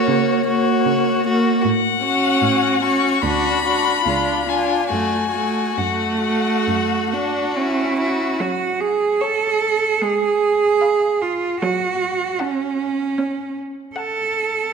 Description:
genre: classical, slow romantic movement for string quartet.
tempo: 67-79 BPM.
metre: 4/4.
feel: rubato.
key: F# minor.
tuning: A4 = 438 Hz.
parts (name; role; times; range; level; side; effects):
rich violin; melody; 0.0-14.5 s; C#5 to C#6; -22 LUFS; left 9 dB; none.
clear violin; second line; 0.0-14.5 s; E#4 to F#5; -24 LUFS; left 2 dB; none.
rich viola; accompaniment; 0.0-13.8 s; F#3 to D4; -21 LUFS; right 2 dB; none.
clear cello; bass; 0.1-14.7 s; C#2 to A4; -21 LUFS; right 4 dB; none.
room: moderate concert hall reverb, RT60 2.3 s.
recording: none.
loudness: -17 LUFS.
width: side -5 dB against mid.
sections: 0.0-8.4 A section; 8.4-14.7 B section.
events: none.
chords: 0.0 F#/C#; 1.6 F#m/A; 3.2 Bm/D; 4.1 C#7b9; 4.9 F#m; 10.0 Fdim/Ab; 11.6 F#m.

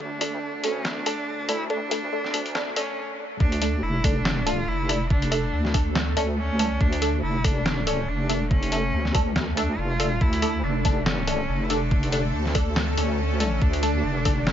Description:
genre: deep dubstep.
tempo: 141 BPM.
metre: 4/4.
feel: swing 56% on 16ths, half-time.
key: D harmonic minor.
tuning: A4 = 440 Hz.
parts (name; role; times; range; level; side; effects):
clear cello; melody; 0.0-14.5 s; C#4 to F4; -30 LUFS; right 1 dB; dub echo.
bowed-like drone; sustained chords; 0.0-14.5 s; D3 to A4; -33 LUFS; right 1 dB; built-in reverb.
deep soft wobble bass; bass; 0.0-14.5 s; F1 to D2; -27 LUFS; equal; chorus, high-pass filter.
electronic kick drum; drums; 0.0-14.3 s; none; -22 LUFS; equal; overdrive, high-pass filter on kick.
filtered dub chord stab; stabs; 0.2-14.5 s; A3 to A4; -30 LUFS; equal; phaser, wide subtle chorus, dub echo.
trip hop sampler-style drum kit; drums; 0.2-14.5 s; hi-hat, snare drum; -28 LUFS; left 1 dB; none.
room: digital ambience.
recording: high-pass filter, nothing above 7.7 kHz.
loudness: -22 LUFS.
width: side -10 dB against mid.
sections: 0.0-3.4 A section; 3.4-14.5 B section.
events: build-up 0.0-3.4; filter sweep on synth stab 0.0-3.4; stop 3.0-3.4; drop 3.4-14.5.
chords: 0.0 D5.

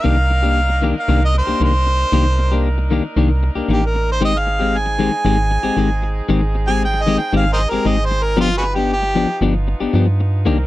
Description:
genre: blues.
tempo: 115 BPM.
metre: 4/4.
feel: straight.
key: C minor.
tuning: A4 = 440 Hz.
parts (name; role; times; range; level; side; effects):
warm harmonica; melody; 0.0-9.4 s; F4 to Ab5; -20 LUFS; right 1 dB; overdrive.
clear horn section; sustained chords; 0.0-10.7 s; F3 to Bb4; -29 LUFS; right 2 dB; none.
clean electric guitar; stabs; 0.0-10.6 s; Eb3 to G4; -18 LUFS; left 5 dB; none.
metallic FM bass; bass; 0.1-10.7 s; G1 to G2; -18 LUFS; right 1 dB; none.
room: little or no reverb.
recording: dry, close 1970s-style studio recording.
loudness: -14 LUFS.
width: side -16 dB against mid.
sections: 0.0-10.7 A section.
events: harmonica solo 0.0-10.7.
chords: 0.0 Cm9; 4.2 Abmaj7; 8.4 G7.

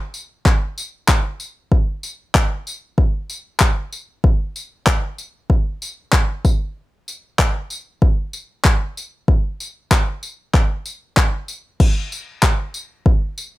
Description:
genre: pop.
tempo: 95 BPM.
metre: 4/4.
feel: straight.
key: none.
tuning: none.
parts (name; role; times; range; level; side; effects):
deep house drum kit; drums; 0.1-13.5 s; crash cymbal, handclaps, kick drum, tambourine; -16 LUFS; equal; none.
room: little or no reverb.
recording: none.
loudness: -17 LUFS.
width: side -18 dB against mid.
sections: 0.0-11.8 A section; 11.8-13.6 A section.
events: none.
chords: none.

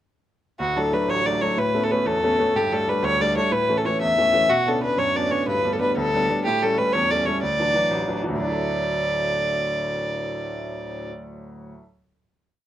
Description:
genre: celtic folk, Celtic jig.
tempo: 123 BPM (dotted quarters).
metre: 6/8.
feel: straight.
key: D major.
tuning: A4 = 441 Hz.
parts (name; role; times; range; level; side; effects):
rich fiddle; melody; 0.6-11.1 s; F#4 to E5; -21 LUFS; equal; none.
bright grand piano; accompaniment; 0.6-11.8 s; A1 to A4; -26 LUFS; equal; none.
pedal harmonium; drone; 0.6-11.1 s; D2 to A2; -32 LUFS; left 1 dB; none.
room: moderate studio reverb, RT60 0.5 s.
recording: rough home demo mix.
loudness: -20 LUFS.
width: side -12 dB against mid.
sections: 0.6-8.4 A section; 8.4-10.3 final chord.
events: none.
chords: 0.6 D; 1.6 Aadd9; 2.5 Gsus2; 3.5 A; 4.5 Bmadd9; 5.5 G; 6.4 A7; 7.4 Dadd9.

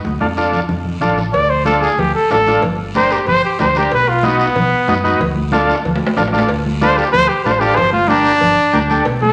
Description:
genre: latin, cumbia.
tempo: 186 BPM.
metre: 4/4.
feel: straight.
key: D minor.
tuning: A4 = 440 Hz.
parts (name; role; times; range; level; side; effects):
congas; percussion; 0.0-9.3 s; none; -24 LUFS; equal; none.
guiro; percussion; 0.0-9.3 s; none; -37 LUFS; equal; none.
fingered electric bass; bass; 0.1-9.3 s; G1 to F#2; -25 LUFS; equal; none.
combo organ; accompaniment; 0.2-9.1 s; D4 to B4; -20 LUFS; equal; none.
clear trumpet; melody; 1.3-9.3 s; B3 to D5; -16 LUFS; equal; none.
cowbell and timbales; percussion; 1.3-9.2 s; none; -26 LUFS; equal; none.
room: wet large studio reverb, RT60 1.1 s.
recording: faint mains hum.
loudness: -15 LUFS.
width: mono.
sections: 0.0-1.3 A section; 1.3-9.3 B section.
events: drum fill 0.1-1.3, 5.5-6.5; trumpet solo 1.3-9.3.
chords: 0.1 Dm; 2.6 Gm; 3.9 B; 5.2 Dm; 7.8 Gm.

